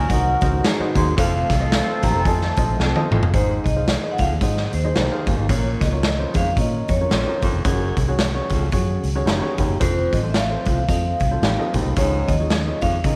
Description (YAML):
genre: uptempo 1960s-style soul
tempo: 111 BPM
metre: 4/4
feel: swing 58% on 8ths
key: unclear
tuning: A4 = 436 Hz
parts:
  - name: vibraphone with medium hard mallets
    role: melody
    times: 0.0-13.2 s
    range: C5 to C6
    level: -28 LUFS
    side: equal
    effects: none
  - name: clear horn section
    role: second line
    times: 0.0-3.1 s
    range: C4 to Bb4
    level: -32 LUFS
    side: equal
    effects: tube saturation
  - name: percussive tonewheel organ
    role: sustained chords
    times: 0.0-3.3 s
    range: Eb3 to A4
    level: -33 LUFS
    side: equal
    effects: none
  - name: warm baritone saxophone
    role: riff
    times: 0.0-13.0 s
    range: Eb2 to Bb2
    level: -31 LUFS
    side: equal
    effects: none
  - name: vintage muted fingered electric bass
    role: bass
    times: 0.0-13.2 s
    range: F1 to Db3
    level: -25 LUFS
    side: equal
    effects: none
  - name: warm upright piano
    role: accompaniment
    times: 0.1-13.2 s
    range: Ab2 to Gb5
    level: -31 LUFS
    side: equal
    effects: none
  - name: raw garage drum kit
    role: drums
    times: 0.1-13.2 s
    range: hi-hat, kick drum, snare drum, toms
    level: -24 LUFS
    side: equal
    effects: none
  - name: congas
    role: percussion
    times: 0.3-13.2 s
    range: none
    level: barely audible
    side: none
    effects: none
room: light reverb, small room ambience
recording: none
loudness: -20 LUFS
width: mono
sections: 0.0-3.3 A section; 3.3-13.2 B section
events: drum fill 2.8-3.3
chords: 0.0 Cdim; 1.2 F; 3.3 Ab; 5.5 Bbm; 7.7 Gbsus2; 9.8 F; 12.0 Dbadd9